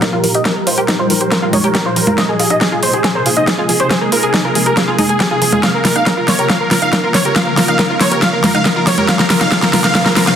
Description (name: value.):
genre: uplifting trance.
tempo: 139 BPM.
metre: 4/4.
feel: straight.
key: unclear.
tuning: A4 = 440 Hz.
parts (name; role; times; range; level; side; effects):
supersaw chords; melody; 0.0-10.4 s; Ab4 to F5; -16 LUFS; right 1 dB; sidechain pumping, low-pass filter, dub echo.
analog pluck; second line; 0.0-10.4 s; Ab4 to F5; -24 LUFS; right 1 dB; none.
shimmering ambient pad; sustained chords; 0.0-10.4 s; Bb2 to Bb4; -20 LUFS; left 1 dB; chorus, built-in reverb, phaser, sidechain pumping.
analog pluck; arpeggios; 0.0-10.3 s; F3 to C5; -21 LUFS; right 1 dB; ensemble chorus, sidechain pumping, dub echo.
big-room dance drum kit; drums; 0.0-10.4 s; congas, hi-hat, snare drum; -14 LUFS; equal; overdrive.
electronic kick drum; drums; 0.0-10.0 s; none; -23 LUFS; equal; none.
riser; sound effects; 8.2-10.4 s; none; -30 LUFS; equal; none.
room: moderate lush hall reverb, RT60 1.8 s, digital ambience.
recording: dense, heavily limited modern master.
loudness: -11 LUFS.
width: side -8 dB against mid.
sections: 0.0-10.4 A section.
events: build-up 0.0-10.4; drum fill 0.0-10.4; filter sweep on supersaw synth 0.0-10.4; filter sweep on synth pluck 0.0-10.4.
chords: 0.0 Ebadd9; 2.2 Abadd9; 5.6 Bbm; 9.1 Fm.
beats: 0.02 | 0.45 0.88 1.32 1.75 | 2.18 2.61 3.04 3.47 | 3.91 4.34 4.77 5.20 | 5.63 6.06 6.50 6.93 | 7.36 7.79 8.22 8.65 | 9.09 9.52 9.95.